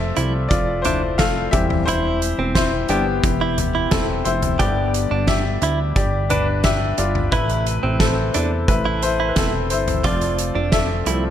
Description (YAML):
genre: piano-driven pop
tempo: 88 BPM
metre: 4/4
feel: straight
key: A minor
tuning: A4 = 440 Hz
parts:
  - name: bright concert grand piano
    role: accompaniment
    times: 0.0-11.3 s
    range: C3 to F5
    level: -21 LUFS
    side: left 4 dB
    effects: slapback echo
  - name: plucky analog bass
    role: bass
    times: 0.0-11.3 s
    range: E1 to E2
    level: -23 LUFS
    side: right 1 dB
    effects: none
  - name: direct-recorded clean electric guitar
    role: riff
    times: 0.2-11.2 s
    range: C4 to G4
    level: -26 LUFS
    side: right 6 dB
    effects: wide subtle chorus
  - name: loose indie drum kit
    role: drums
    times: 0.2-11.2 s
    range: hi-hat, kick drum, snare drum, toms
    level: -22 LUFS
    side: right 1 dB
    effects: none
room: light reverb, small room ambience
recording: none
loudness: -17 LUFS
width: side -10 dB against mid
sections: 0.0-11.3 A section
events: grand piano solo 0.0-11.3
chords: 0.0 F; 1.5 C/E; 4.6 G; 7.3 Amadd9; 10.1 F